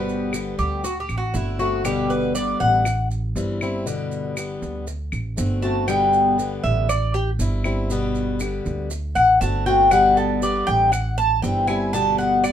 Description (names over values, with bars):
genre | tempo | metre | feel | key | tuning
latin, Cuban son and guajira | 119 BPM | 4/4 | straight | G major | A4 = 440 Hz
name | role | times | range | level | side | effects
picked plugged-in swing-style acoustic guitar | accompaniment | 0.0-12.5 s | B2 to G4 | -24 LUFS | left 3 dB | none
Cuban tres | arpeggios | 0.0-12.5 s | E4 to A5 | -19 LUFS | equal | none
upright bass | bass | 0.0-12.5 s | G1 to D2 | -25 LUFS | right 1 dB | none
maracas | percussion | 0.1-12.5 s | none | -37 LUFS | right 5 dB | none
claves | percussion | 0.3-12.5 s | none | -32 LUFS | left 2 dB | none
room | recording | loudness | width
light reverb | minimal, uncompressed stereo recording | -19 LUFS | side -9 dB against mid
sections
0.0-12.5 A section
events
Cuban tres solo 0.0-12.5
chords
0.0 G; 0.8 D7; 1.9 G; 2.9 Am7; 3.9 G; 4.9 D7; 5.9 G; 6.9 Am7; 7.9 G; 8.9 D7; 9.9 G; 10.9 Am7; 11.9 G